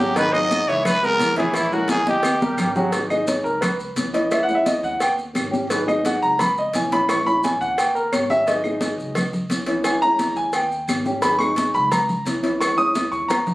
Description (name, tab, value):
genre	latin, Cuban son and guajira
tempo	174 BPM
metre	4/4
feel	straight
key	G# minor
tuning	A4 = 440 Hz
part	growling trumpet	melody	0.0-2.7 s	E4 to D#5	-20 LUFS	equal	none
part	nylon-string guitar	accompaniment	0.0-13.3 s	D#3 to G#4	-25 LUFS	equal	none
part	warm grand piano	arpeggios	0.0-13.5 s	D#3 to D#6	-21 LUFS	equal	none
part	upright bass	bass	0.0-13.5 s	G#1 to D#2	-35 LUFS	equal	none
part	congas	percussion	0.2-13.5 s	none	-26 LUFS	equal	none
part	cowbell and bongos	percussion	0.2-13.5 s	none	-28 LUFS	equal	none
part	maracas	percussion	0.2-13.5 s	none	-35 LUFS	equal	none
part	claves	percussion	0.3-13.5 s	none	-34 LUFS	right 1 dB	none
room	moderate studio reverb, RT60 0.8 s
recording	recorded on a phone in the room, club reverb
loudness	-18 LUFS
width	side -18 dB against mid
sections	0.0-2.9 A section; 2.9-13.5 B section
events	drum fill 2.1-2.9, 13.3; grand piano solo 2.9-13.5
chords	0.2 G#m7; 0.9 C#m7; 1.6 A#m7b5; 2.2 D#7; 2.9 G#m7; 3.6 C#m7; 4.3 A#m7b5; 5.0 D#7; 5.7 G#m7; 6.4 C#m7; 7.1 A#m7b5; 7.8 D#7; 8.5 G#m7; 9.2 C#m7; 9.8 A#m7b5; 10.5 D#7; 11.2 G#m7; 11.9 C#m7; 12.6 A#m7b5